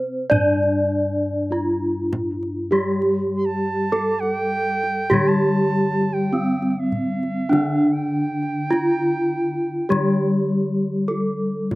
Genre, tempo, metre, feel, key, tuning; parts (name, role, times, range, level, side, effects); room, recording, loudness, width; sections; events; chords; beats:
Javanese gamelan; 50 BPM; 4/4; straight; A4 = 442 Hz
gamelan-type bronze metallophone; melody; 0.0-11.8 s; C4-25c to D5; -22 LUFS; right 1 dB; slapback echo
gamelan-type bronze metallophone; accompaniment; 0.0-11.8 s; D3 to D4; -24 LUFS; left 2 dB; slapback echo
gamelan-type bossed gongs; bass; 0.0-11.8 s; G2 to C5-25c; -27 LUFS; equal
kendang; percussion; 0.3-11.8 s; -27 LUFS; right 1 dB
bright reedy bansuri; second line; 3.4-10.3 s; F5-50c to C6-28c; -28 LUFS; right 3 dB
little or no reverb; recorded outdoors, with no room sound; -18 LUFS; side -19 dB against mid
0.0-11.8 A section
0.31 1.51 | 2.71 3.91 5.11 6.31 | 7.51 8.71 9.91 11.11